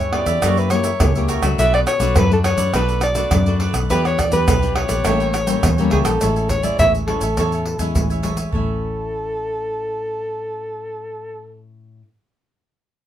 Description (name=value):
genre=samba and choro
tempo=104 BPM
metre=4/4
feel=straight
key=A major from 6.2 s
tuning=A4 = 440 Hz
part: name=breathy soprano saxophone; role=melody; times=0.0-11.6 s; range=G#4 to E5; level=-21 LUFS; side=equal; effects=none
part: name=cavaquinho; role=accompaniment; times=0.0-12.1 s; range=D4 to G#5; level=-28 LUFS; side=right 6 dB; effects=none
part: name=nylon-string guitar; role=accompaniment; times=0.0-12.1 s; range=F#2 to G4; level=-25 LUFS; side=left 5 dB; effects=none
part: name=vintage muted fingered electric bass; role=bass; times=0.0-11.7 s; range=A1 to G2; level=-21 LUFS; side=equal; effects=none
part: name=tube shaker, pandeiro, tamborim and surdo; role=percussion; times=0.0-8.7 s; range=none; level=-21 LUFS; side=right 1 dB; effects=none
room=moderate studio ambience, RT60 0.4 s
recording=minimal, uncompressed stereo recording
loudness=-16 LUFS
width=side -11 dB against mid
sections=0.0-6.2 A section; 6.2-8.5 B section; 8.5-10.8 C section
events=none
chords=0.4 F#7b9; 1.6 Bm7; 3.9 Em7; 5.1 A7b9; 6.2 Amaj7